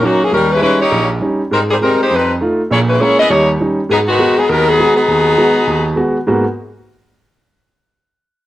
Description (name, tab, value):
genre	jazz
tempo	202 BPM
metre	4/4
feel	swing 61% on 8ths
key	G# minor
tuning	A4 = 443 Hz
part	edgy saxophone section	melody	0.0-5.9 s	D#3 to D#5	-12 LUFS	left 1 dB	none
part	clear baby grand piano	accompaniment	0.0-6.4 s	A#1 to G4	-15 LUFS	right 1 dB	none
room	moderate large studio reverb, RT60 0.9 s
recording	worn, warbling old tape, cassette tape, warbly pitch drift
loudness	-11 LUFS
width	side -14 dB against mid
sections	0.0-6.3 A section; 6.3-7.5 B section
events	none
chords	0.3 D#7; 1.5 G#maj7; 2.1 F7; 2.7 A#m7b5; 3.3 D#7; 3.9 G#m7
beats	0.02 | 0.32 0.61 0.91 1.21 | 1.51 1.81 2.10 2.40 | 2.70 3.00 3.29 3.59 | 3.89 4.19 4.48 4.78 | 5.08 5.38 5.67 5.97 | 6.27